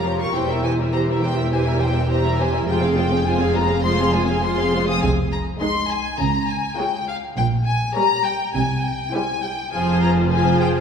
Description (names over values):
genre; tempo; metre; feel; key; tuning
quick classical-period movement for string orchestra; 102 BPM; 4/4; straight; F minor; A4 = 440 Hz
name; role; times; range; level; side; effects
warm symphonic violin section; melody; 0.0-10.7 s; F5 to Eb6; -24 LUFS; left 5 dB; none
rich symphonic violin section; second line; 0.0-10.8 s; F4 to F5; -27 LUFS; left 2 dB; none
rich symphonic viola section; accompaniment; 0.0-10.8 s; E3 to Ab4; -23 LUFS; right 1 dB; none
warm symphonic cello section; bass; 0.0-10.8 s; E2 to Db3; -25 LUFS; right 1 dB; none
warm symphonic double bass section; bass; 0.0-10.8 s; E1 to Db2; -24 LUFS; right 2 dB; none
room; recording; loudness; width
wet scoring stage reverb, RT60 2.1 s; heard from further back in the room; -18 LUFS; side -7 dB against mid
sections
0.0-10.8 A section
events
none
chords
0.3 C7/E; 2.7 Fm; 5.0 Ab/C; 6.2 Db; 7.4 Gdim/Bb; 8.5 C; 9.7 Fm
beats
| 0.34 0.93 1.52 2.10 | 2.68 3.26 3.85 4.44 | 5.03 5.61 6.19 6.78 | 7.37 7.96 8.55 9.14 | 9.72 10.31